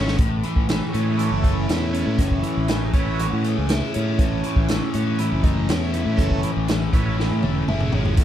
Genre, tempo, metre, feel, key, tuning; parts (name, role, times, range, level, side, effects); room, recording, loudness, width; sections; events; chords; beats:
psychedelic rock; 120 BPM; 4/4; straight; A major; A4 = 440 Hz
combo organ; sustained chords; 0.0-8.2 s; E3 to C#6; -29 LUFS; right 3 dB; phaser
biting overdriven guitar; riff; 0.0-8.2 s; A2 to E4; -25 LUFS; left 2 dB; flanger
growling fingered electric bass; bass; 0.0-8.2 s; E1 to A2; -23 LUFS; equal; overdrive
vintage drum kit; drums; 0.1-8.2 s; hi-hat, kick drum, snare drum, toms; -22 LUFS; equal
light reverb, small room reverb; echo-heavy mix; -19 LUFS; side -11 dB against mid
0.2-8.2 A section
drum fill 0.0, 7.2-8.2; transistor combo organ solo 0.2-8.2
0.2 A
| 0.20 0.69 1.19 1.69 | 2.19 2.69 3.19 3.69 | 4.19 4.69 5.19 5.69 | 6.19 6.69 7.19 7.69 | 8.19